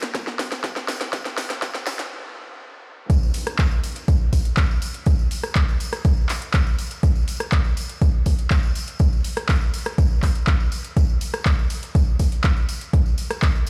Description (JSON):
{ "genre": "house", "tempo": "122 BPM", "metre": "4/4", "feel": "straight", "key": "none", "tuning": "none", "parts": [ { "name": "big-room dance drum kit", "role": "drums", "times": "0.0-13.7 s", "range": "handclaps, hi-hat, rim click, snare drum", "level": "-30 LUFS", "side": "equal", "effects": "overdrive, sidechain pumping on hats" }, { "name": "tambourine", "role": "percussion", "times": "0.0-13.7 s", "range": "none", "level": "-40 LUFS", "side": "equal", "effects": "none" }, { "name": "electronic kick drum", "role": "drums", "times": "0.1-13.5 s", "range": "none", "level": "-20 LUFS", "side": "equal", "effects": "overdrive" } ], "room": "digital ambience", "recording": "played on a big sound system in a bare room, stone room reverb, high-pass filter", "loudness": "-21 LUFS", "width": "mono", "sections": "0.0-3.1 A section; 3.1-13.7 B section", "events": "build-up 0.0-3.1; drum fill 0.0-2.1; stop 2.1-3.1; drop 3.1-13.7", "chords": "none" }